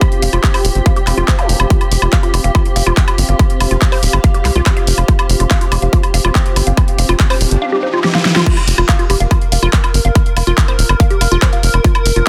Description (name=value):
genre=psychedelic trance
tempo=142 BPM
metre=4/4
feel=straight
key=unclear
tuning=A4 = 440 Hz
part: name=swarming drone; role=sustained chords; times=0.0-12.3 s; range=G4 to Bb4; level=-26 LUFS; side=equal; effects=built-in reverb, sidechain pumping
part: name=big-room dance drum kit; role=drums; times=0.0-12.2 s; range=crash cymbal, handclaps, hi-hat, snare drum, woodblock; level=-20 LUFS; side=equal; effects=overdrive, small room ambience
part: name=electronic kick drum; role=drums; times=0.0-11.9 s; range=none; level=-15 LUFS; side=equal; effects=overdrive, small room ambience
part: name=granular cloud pad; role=texture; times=0.0-7.6 s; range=C4 to G5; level=-29 LUFS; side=equal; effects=built-in reverb, sidechain pumping
part: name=woody wave-folded pluck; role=riff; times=0.2-12.2 s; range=F4 to G5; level=-23 LUFS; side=equal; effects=chorus, sidechain pumping, dub echo
part: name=tight sequencer bass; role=bass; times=0.2-12.2 s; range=Eb1 to C2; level=-16 LUFS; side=equal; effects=none
part: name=zap and riser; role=sound effects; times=1.4-1.5, 6.5-8.5 s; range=none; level=-29 LUFS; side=equal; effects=none
room=digital ambience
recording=dense, heavily limited modern master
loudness=-13 LUFS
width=mono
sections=0.0-8.5 A section; 8.5-12.3 B section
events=riser 6.5-8.5; drum fill 8.0-8.5; band accent 8.4; drop 8.5-12.3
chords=0.0 F5